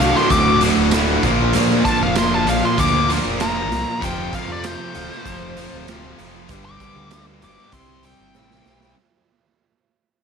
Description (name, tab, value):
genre	classic rock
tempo	97 BPM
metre	4/4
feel	straight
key	unclear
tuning	A4 = 440 Hz
part	bluesy overdriven lead guitar	melody	0.0-8.9 s	C5 to D6	-22 LUFS	left 2 dB	wah, distortion, slapback echo
part	picked steel-string acoustic guitar	accompaniment	0.0-9.0 s	F2 to G4	-29 LUFS	left 11 dB	none
part	tonewheel organ	sustained chords	0.0-9.0 s	C4 to C5	-34 LUFS	left 1 dB	none
part	biting overdriven guitar	riff	0.0-8.9 s	D2 to C4	-24 LUFS	equal	none
part	overdriven electric guitar	riff	0.0-9.0 s	D2 to C4	-26 LUFS	left 13 dB	none
part	sludgy distorted guitar	riff	0.0-9.0 s	D2 to C5	-24 LUFS	right 10 dB	overdrive
part	growling fingered electric bass	bass	0.0-8.9 s	D1 to Bb2	-25 LUFS	left 1 dB	overdrive
part	egg shaker	percussion	0.0-8.8 s	none	-40 LUFS	right 16 dB	none
part	raw garage drum kit	drums	0.2-9.0 s	hi-hat, kick drum, snare drum, tambourine	-24 LUFS	right 4 dB	none
room	light reverb, studio reverb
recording	1960s-style stereo with parts hard left and right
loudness	-15 LUFS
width	side -6 dB against mid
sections	0.0-9.0 A section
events	fade-out 0.0-9.0; lead electric guitar solo 0.0-9.0; drum fill 8.3-9.0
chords	0.0 D; 1.2 Bb; 4.0 F; 6.5 G; 7.7 C